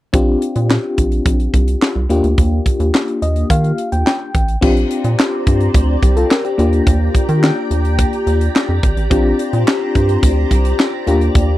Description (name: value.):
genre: early-eighties boogie funk.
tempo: 107 BPM.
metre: 4/4.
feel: straight.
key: Bb major.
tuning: A4 = 439 Hz.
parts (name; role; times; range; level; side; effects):
FM electric piano with tremolo; accompaniment; 0.1-11.6 s; Bb3 to G5; -18 LUFS; left 3 dB; none.
rubbery square bass; bass; 0.1-11.6 s; Ab1 to Eb3; -16 LUFS; right 1 dB; none.
tight funk drum kit; drums; 0.1-11.5 s; crash cymbal, handclaps, hi-hat, kick drum, snare drum; -15 LUFS; equal; none.
soft string machine; sustained chords; 4.9-11.6 s; G4 to Bb5; -23 LUFS; equal; phaser, ensemble chorus.
room: little or no reverb.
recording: dry, close 1970s-style studio recording.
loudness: -13 LUFS.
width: side -15 dB against mid.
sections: 0.1-4.6 A section; 4.6-11.6 B section.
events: FM electric piano fill 2.9-4.6.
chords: 0.1 Bb69; 2.1 Ebmaj7; 4.6 Bb69; 6.6 Ebmaj7; 9.1 Bb69; 11.1 Ebmaj7.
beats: | 0.14 0.70 1.26 1.82 | 2.38 2.94 3.50 4.06 | 4.62 5.18 5.75 6.31 | 6.87 7.43 7.99 8.55 | 9.11 9.67 10.23 10.79 | 11.35.